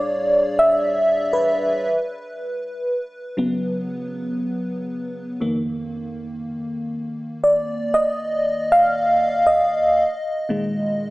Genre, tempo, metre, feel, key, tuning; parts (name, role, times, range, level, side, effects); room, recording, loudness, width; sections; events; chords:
R&B; 59 BPM; 4/4; swing 54% on 16ths; A4 = 438 Hz
FM electric piano with soft pad layer; solo; 0.0-11.1 s; F2 to F5; -19 LUFS; equal; chorus
moderate lush hall reverb, RT60 3.2 s; small speaker sound; -19 LUFS; side -20 dB against mid
0.0-11.1 A section
FM electric piano solo 0.0-11.1
0.0 A7sus4; 1.8 C#7sus4; 5.4 F7sus4; 10.0 Bb7sus4